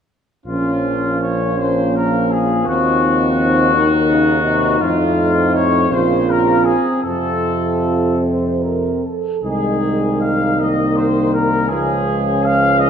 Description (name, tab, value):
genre	classical, hymn-like piece for brass band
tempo	48-56 BPM (dotted quarters)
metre	6/8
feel	rubato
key	Bb minor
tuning	A4 = 437 Hz
part	dark trumpet section	melody	0.5-12.9 s	F4 to F5	-19 LUFS	left 4 dB	none
part	warm French horn section	second line	0.5-12.9 s	Db4 to C5	-20 LUFS	right 4 dB	none
part	brilliant trombone	accompaniment	0.5-12.9 s	A2 to F3	-24 LUFS	right 3 dB	none
part	warm trombone section	accompaniment	0.5-12.9 s	Ab3 to Eb4	-21 LUFS	left 2 dB	none
part	clear tuba	bass	0.5-12.9 s	Bb1 to F2	-21 LUFS	right 1 dB	none
room	wet concert hall reverb, RT60 1.9 s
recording	none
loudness	-14 LUFS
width	side -8 dB against mid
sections	0.5-12.9 A section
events	none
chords	0.5 Bbm; 2.7 Cdim/Eb; 4.8 F7; 5.9 Bbm; 7.0 F; 9.4 Ab/C; 11.7 Db